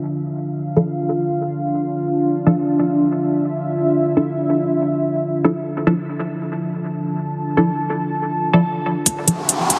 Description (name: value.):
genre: deep dubstep.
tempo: 141 BPM.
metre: 4/4.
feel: half-time.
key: D minor.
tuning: A4 = 439 Hz.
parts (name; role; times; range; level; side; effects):
deep dark ambient pad; sustained chords; 0.0-9.8 s; D4 to A5; -22 LUFS; equal; chorus, built-in reverb.
filtered dub chord stab; stabs; 0.8-9.4 s; F3 to A4; -22 LUFS; equal; phaser, analog chorus, dub echo.
electronic hi-hat; drums; 9.1-9.8 s; none; -15 LUFS; equal; none.
electronic kick drum; drums; 9.1-9.8 s; none; -26 LUFS; equal; high-pass filter on kick.
riser; sound effects; 9.2-9.8 s; none; -23 LUFS; equal; none.
room: moderate huge ambient reverb, RT60 4.9 s.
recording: none.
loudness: -20 LUFS.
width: mono.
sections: 0.0-9.1 A section.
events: filter sweep on synth stab 0.0-9.1; riser 9.2-9.8.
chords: 0.0 Dmadd9.